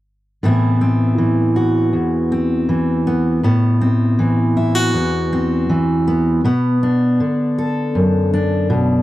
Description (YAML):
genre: folk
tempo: 80 BPM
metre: 4/4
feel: straight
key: A dorian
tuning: A4 = 440 Hz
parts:
  - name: fingerpicked steel-string acoustic guitar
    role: accompaniment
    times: 0.4-9.0 s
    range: E2 to A4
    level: -14 LUFS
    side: equal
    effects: none
room: little or no reverb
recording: dry, close 1970s-style studio recording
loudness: -14 LUFS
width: side -15 dB against mid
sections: 0.4-9.0 A section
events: none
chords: 0.4 Amadd9; 6.4 Bm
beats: | 0.42 1.18 1.93 2.68 | 3.43 4.18 4.94 5.69 | 6.44 7.19 7.94 8.69